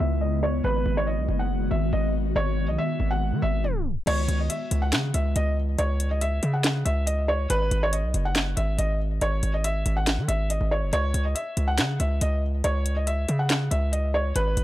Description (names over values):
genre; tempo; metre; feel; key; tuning
hip hop, trap; 140 BPM; 4/4; half-time; unclear; A4 = 440 Hz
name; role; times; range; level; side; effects
felt-muted upright piano; melody; 0.0-14.6 s; B4 to F#5; -28 LUFS; equal; low-pass filter, ping-pong delay
ethereal airy pad; sustained chords; 0.0-4.0 s; C#3 to F#4; -31 LUFS; left 1 dB; ensemble chorus, built-in reverb, low-pass filter
distorted 808-style bass; bass; 0.0-14.6 s; F#1 to D#3; -24 LUFS; equal; distortion
trap drum kit; drums; 4.1-14.6 s; crash cymbal, handclaps, hi-hat, snare drum; -27 LUFS; equal; none
room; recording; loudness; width
little or no reverb; dark, warm production, tape stop; -22 LUFS; side -14 dB against mid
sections
0.0-4.1 A section; 4.1-14.6 B section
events
filter sweep 0.0-4.1; tape stop 3.6-4.1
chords
0.0 C#m7; 0.6 G#m7; 4.1 C#m; 7.5 G#7(no3); 10.9 C#m